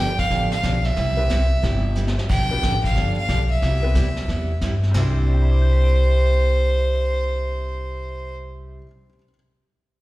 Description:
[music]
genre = country, western swing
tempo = 181 BPM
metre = 4/4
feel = swing 65% on 8ths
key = C major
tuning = A4 = 438 Hz
[part]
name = clear fiddle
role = melody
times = 0.0-8.4 s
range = C5 to G5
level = -25 LUFS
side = right 1 dB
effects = slapback echo
[part]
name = picked steel-string acoustic guitar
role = accompaniment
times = 0.0-8.8 s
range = C3 to G4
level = -29 LUFS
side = right 3 dB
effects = slapback echo
[part]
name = upright bass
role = bass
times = 0.0-8.8 s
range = G1 to G2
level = -20 LUFS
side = equal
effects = none
[part]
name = vintage brush drum kit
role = drums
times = 0.2-5.2 s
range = brushed snare drum, crash cymbal, hi-hat, kick drum, snare drum, splash cymbal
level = -28 LUFS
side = equal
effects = none
[part]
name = bright upright piano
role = accompaniment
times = 1.2-9.3 s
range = C3 to D7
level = -34 LUFS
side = left 2 dB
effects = none
[sound]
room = light reverb, small room ambience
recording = live gig heard through the venue's PA, recital hall reverb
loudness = -18 LUFS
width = side -18 dB against mid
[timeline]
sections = 0.0-2.3 A section; 2.3-4.9 B section; 4.9-7.6 C section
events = drum fill 2.0-2.3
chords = 0.0 G7; 1.0 Cmaj7; 2.3 G7; 3.6 Cmaj7

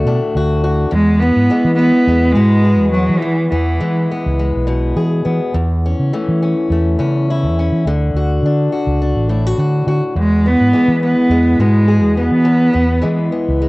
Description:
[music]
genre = highlife guitar band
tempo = 104 BPM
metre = 4/4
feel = swing 54% on 16ths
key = E mixolydian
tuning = A4 = 440 Hz
[part]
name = picked old ladder-braced acoustic guitar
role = accompaniment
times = 0.0-13.7 s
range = E2 to G#4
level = -19 LUFS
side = left 2 dB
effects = none
[part]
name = fingered electric bass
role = bass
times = 0.0-13.7 s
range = A1 to E3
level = -16 LUFS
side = equal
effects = none
[part]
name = rich cello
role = melody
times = 0.9-4.3, 10.2-13.3 s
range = E3 to B3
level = -13 LUFS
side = right 1 dB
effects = none
[sound]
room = light reverb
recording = home recording on cassette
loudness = -12 LUFS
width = side -22 dB against mid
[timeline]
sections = 0.9-13.7 A section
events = none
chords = 0.0 D; 0.9 E; 5.5 A/E; 7.9 D; 10.2 E

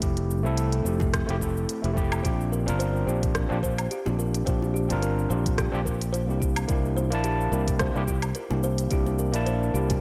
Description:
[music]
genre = sunset chillout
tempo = 108 BPM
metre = 4/4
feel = swing 55% on 16ths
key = Bb lydian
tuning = A4 = 440 Hz
[part]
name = overdriven tine electric piano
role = accompaniment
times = 0.0-10.0 s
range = A3 to A5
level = -32 LUFS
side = equal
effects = delay
[part]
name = fingered electric bass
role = bass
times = 0.0-10.0 s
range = F1 to C2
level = -29 LUFS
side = equal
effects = tube saturation
[part]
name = electronic kick drum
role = drums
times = 0.0-10.0 s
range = none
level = -30 LUFS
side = equal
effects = studio reverb
[part]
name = smooth R&B drum kit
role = drums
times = 0.0-10.0 s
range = hi-hat, rim click, shaker, woodblock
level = -36 LUFS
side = equal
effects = studio reverb
[part]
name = bongos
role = percussion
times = 0.2-4.7, 8.5-10.0 s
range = none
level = -42 LUFS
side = equal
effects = none
[part]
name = kalimba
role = arpeggios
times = 2.2-9.9 s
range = G4 to C5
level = -36 LUFS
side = equal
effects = delay
[sound]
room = moderate lush hall reverb, RT60 1.9 s, digital ambience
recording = bright 1980s-style digital production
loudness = -26 LUFS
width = mono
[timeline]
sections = 0.0-2.2 A section; 2.2-10.0 B section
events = none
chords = 0.0 Fmaj9; 2.2 Bb69; 6.4 C9

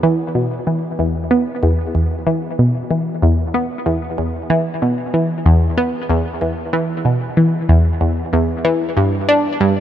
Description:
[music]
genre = ambient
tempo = 94 BPM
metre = 4/4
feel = straight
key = E minor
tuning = A4 = 440 Hz
[part]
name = analog pluck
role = solo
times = 0.0-9.7 s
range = E2 to D4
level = -15 LUFS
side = equal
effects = chorus, phaser, tape echo
[sound]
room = moderate huge ambient reverb, RT60 9.2 s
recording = none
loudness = -15 LUFS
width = side -10 dB against mid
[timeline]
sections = 0.0-9.8 A section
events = none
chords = none

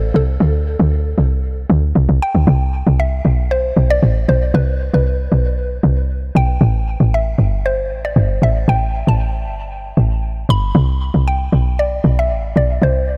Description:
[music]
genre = amapiano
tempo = 116 BPM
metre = 4/4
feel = straight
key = C major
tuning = A4 = 439 Hz
[part]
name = mallet-like synth pluck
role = melody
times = 0.0-13.2 s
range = A4 to B5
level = -24 LUFS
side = equal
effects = chorus, phaser, diffuse ambient delay
[part]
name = woody log drum bass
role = bass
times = 0.0-13.2 s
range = G1 to D2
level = -17 LUFS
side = equal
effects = none
[sound]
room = light reverb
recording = none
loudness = -16 LUFS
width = mono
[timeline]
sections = 0.0-13.2 A section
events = none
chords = 0.0 D7(no3); 2.5 Cmaj7(no3); 6.6 A5; 10.7 C5

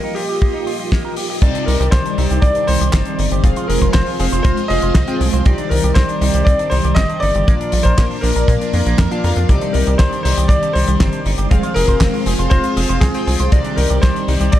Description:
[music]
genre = italo disco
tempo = 119 BPM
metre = 4/4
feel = straight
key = C minor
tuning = A4 = 444 Hz
[part]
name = bright baby grand piano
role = melody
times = 0.0-14.6 s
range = G4 to Eb5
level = -22 LUFS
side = left 1 dB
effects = tape echo
[part]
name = string machine, full ensemble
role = sustained chords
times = 0.0-14.6 s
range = Eb3 to G5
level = -22 LUFS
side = equal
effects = phaser, ensemble chorus, vintage 12-bit sampler grit
[part]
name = electric guitar with an envelope filter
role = arpeggios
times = 0.0-14.6 s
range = Bb3 to C5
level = -30 LUFS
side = right 4 dB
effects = tape echo
[part]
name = damped 70s drum kit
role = drums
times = 0.2-14.6 s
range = crash cymbal, handclaps, hi-hat, snare drum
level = -24 LUFS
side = left 2 dB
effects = studio reverb
[part]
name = kick drum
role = drums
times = 0.4-14.6 s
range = none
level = -14 LUFS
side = equal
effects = studio reverb
[part]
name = chorused polysynth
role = stabs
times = 1.4-14.6 s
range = Bb2 to G5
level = -24 LUFS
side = left 2 dB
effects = none
[part]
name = tight sequencer bass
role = bass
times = 1.4-14.6 s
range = F1 to Bb2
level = -17 LUFS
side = equal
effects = tube saturation
[sound]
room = light reverb, small room ambience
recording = dark, warm production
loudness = -13 LUFS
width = side -12 dB against mid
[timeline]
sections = 0.0-1.4 A section; 1.4-14.6 B section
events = none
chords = 0.0 Ebadd9; 1.4 Cmadd9; 3.4 Fm; 5.5 Cmadd9; 7.5 Bb; 9.5 Cmadd9; 11.5 Fm; 13.5 Cmadd9

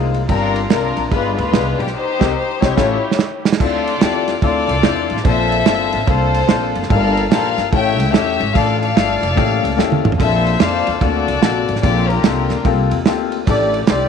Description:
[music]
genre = uptempo gospel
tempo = 146 BPM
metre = 4/4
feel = swing 64% on 8ths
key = D minor from 3.6 s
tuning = A4 = 437 Hz
[part]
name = warm studio string section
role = melody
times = 0.0-14.1 s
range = D4 to G5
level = -19 LUFS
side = left 3 dB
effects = none
[part]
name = clear grand piano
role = accompaniment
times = 0.0-14.1 s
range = G2 to Bb5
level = -20 LUFS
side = left 14 dB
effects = none
[part]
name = upright bass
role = bass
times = 0.0-14.1 s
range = F1 to F2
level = -21 LUFS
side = right 1 dB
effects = none
[part]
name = warm soul drum kit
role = drums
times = 0.1-14.0 s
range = crash cymbal, kick drum, ride cymbal, snare drum, toms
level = -18 LUFS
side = right 5 dB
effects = none
[sound]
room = light reverb, small room ambience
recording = 1960s-style stereo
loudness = -14 LUFS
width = side -6 dB against mid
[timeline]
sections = 0.0-3.6 A section; 3.6-14.1 A section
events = grand piano fill 0.0; band accent 1.9-3.6; drum fill 2.8-3.6, 9.8-10.2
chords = 0.3 G7sus4; 1.1 G7b9b13; 1.9 Cm7; 2.8 A7b13; 3.6 Dm9; 5.3 Bbmaj9; 6.9 Gm9; 7.7 A7; 8.5 Dm/A; 9.4 A7b9; 10.2 Bbmaj9; 11.0 D7b13; 11.8 Gm11/Bb; 13.5 A7sus4

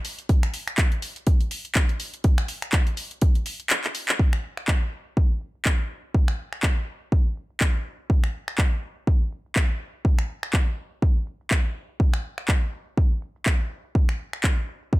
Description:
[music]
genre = house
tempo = 123 BPM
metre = 4/4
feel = swing 57% on 16ths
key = none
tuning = none
[part]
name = house drum kit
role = drums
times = 0.0-14.5 s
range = finger snaps, handclaps, hi-hat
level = -27 LUFS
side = equal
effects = sidechain pumping on hats, studio reverb
[part]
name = maracas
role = percussion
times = 0.1-15.0 s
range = none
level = -51 LUFS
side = right 11 dB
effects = none
[part]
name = electronic kick drum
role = drums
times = 0.3-15.0 s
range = none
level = -20 LUFS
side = equal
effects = studio reverb
[sound]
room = little or no reverb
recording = none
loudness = -22 LUFS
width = side -20 dB against mid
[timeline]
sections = 0.0-4.2 A section; 4.2-15.0 B section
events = kick drops out 3.7-4.2; drum fill 3.8-4.2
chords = none

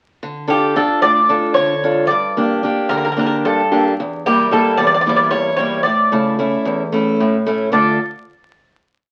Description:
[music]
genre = greek folk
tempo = 224 BPM (eighths)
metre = 7/8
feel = straight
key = D harmonic minor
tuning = A4 = 440 Hz
[part]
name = picked steel-string acoustic guitar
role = accompaniment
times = 0.2-8.0 s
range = E2 to A4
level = -19 LUFS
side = equal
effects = none
[part]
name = Greek bouzouki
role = melody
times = 0.5-8.0 s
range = G4 to D5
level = -18 LUFS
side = equal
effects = none
[sound]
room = wet studio reverb, RT60 0.7 s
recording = very old 78 rpm record, vinyl crackle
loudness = -16 LUFS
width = mono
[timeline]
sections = 0.2-7.7 A section; 7.7-9.1 final chord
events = none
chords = 0.2 Dm; 2.1 Gm; 4.0 Edim; 5.9 A; 7.7 Dm

